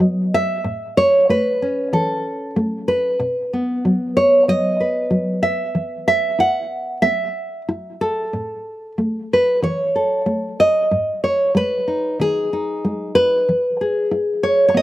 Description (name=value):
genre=folk, solo fingerstyle acoustic guitar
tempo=94 BPM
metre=4/4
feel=straight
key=unclear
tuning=A4 = 439 Hz
part: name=nylon-string guitar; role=solo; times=0.0-14.8 s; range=G#2 to F#5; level=-16 LUFS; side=equal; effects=slapback echo
room=little or no reverb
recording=recorded outdoors, with no room sound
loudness=-16 LUFS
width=side -15 dB against mid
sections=0.0-14.8 A section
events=none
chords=0.0 B5; 0.6 A; 3.2 B; 5.7 Esus2; 8.3 A; 10.9 G#m; 13.5 E